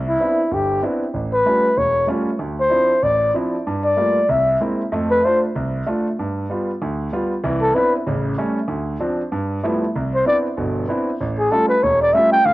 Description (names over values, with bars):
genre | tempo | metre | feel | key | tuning
jazz | 191 BPM | 4/4 | swing 62% on 8ths | C major | A4 = 440 Hz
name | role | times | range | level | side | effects
warm grand piano | accompaniment | 0.0-12.5 s | E1 to F4 | -21 LUFS | right 1 dB | none
breathy flugelhorn | melody | 0.1-5.4, 7.6-7.9, 10.1-12.5 s | E4 to G5 | -17 LUFS | left 1 dB | none
room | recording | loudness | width
light reverb, small room ambience | home recording on cassette | -17 LUFS | side -17 dB against mid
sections
0.0-9.9 A section; 9.9-12.5 A section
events
flugelhorn solo 0.0-12.5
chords
0.0 Cmaj9; 1.1 A7b13; 2.4 Dm9; 3.6 Gm9; 4.3 Caug7; 4.9 F6; 6.2 G7; 7.4 Cmaj9; 8.1 A7; 8.7 Dm7; 9.3 G13; 9.9 Cmaj9; 11.2 A7b13